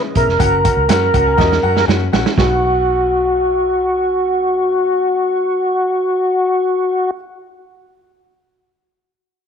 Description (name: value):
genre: uptempo 1960s-style soul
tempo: 121 BPM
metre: 4/4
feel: straight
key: B major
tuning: A4 = 439 Hz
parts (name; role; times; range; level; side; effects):
- mellow tonewheel organ; melody; 0.0-7.1 s; F#4 to A#4; -15 LUFS; equal; chorus vibrato, slow rotary speaker
- clear upright piano; accompaniment; 0.0-7.2 s; B1 to A#5; -23 LUFS; left 14 dB; none
- vintage muted fingered electric bass; bass; 0.2-7.1 s; E#1 to B2; -20 LUFS; equal; none
- vintage drum kit; drums; 0.2-2.5 s; hi-hat, kick drum, snare drum; -17 LUFS; right 4 dB; none
room: light reverb, small room reverb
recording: 1960s-style stereo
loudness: -13 LUFS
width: side -7 dB against mid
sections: 0.0-2.4 A section; 2.4-6.3 B section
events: upright piano fill 0.9-2.4; drum fill 1.4-2.4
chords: 0.4 F#; 2.4 B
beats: | 0.40 0.89 1.39 1.88 | 2.38 2.87 3.37 3.87 | 4.36 4.86 5.35 5.85